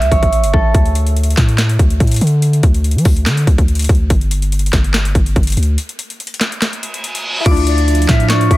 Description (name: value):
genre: hip hop, trap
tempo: 143 BPM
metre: 4/4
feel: half-time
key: D harmonic minor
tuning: A4 = 441 Hz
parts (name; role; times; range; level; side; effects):
- concert harp; melody; 0.0-2.7, 7.5-8.6 s; A4 to F6; -20 LUFS; right 2 dB; low-pass filter, tape echo
- long sustained 808-style bass; bass; 0.0-8.6 s; G1 to F3; -14 LUFS; equal; none
- trap drum kit; drums; 0.0-8.6 s; crash cymbal, handclaps, hi-hat, kick drum, snare drum; -15 LUFS; equal; overdrive
- reverse cymbal; sound effects; 6.8-7.5 s; none; -23 LUFS; right 2 dB; none
- glassy digital keys; accompaniment; 7.4-8.6 s; D4 to F4; -19 LUFS; left 3 dB; chorus, low-pass filter
- warbly tape-like pad; sustained chords; 7.9-8.6 s; F3 to E5; -20 LUFS; right 5 dB; chorus, built-in reverb, phaser
- reedy polished pan flute; second line; 7.7-8.6 s; D5 to E5; -21 LUFS; left 1 dB; none
room: digital ambience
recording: dense, heavily limited modern master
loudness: -11 LUFS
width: side -17 dB against mid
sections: 0.0-7.5 A section; 7.5-8.6 B section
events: break 5.8-7.5; reverse cymbal 6.8-7.5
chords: 0.0 A; 0.7 D5; 4.1 G5; 7.5 Dmadd9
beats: 0.33 | 0.74 1.17 1.58 2.00 | 2.42 2.84 3.26 3.68 | 4.10 4.52 4.94 5.36 | 5.78 6.20 6.62 7.04 | 7.46 7.88 8.30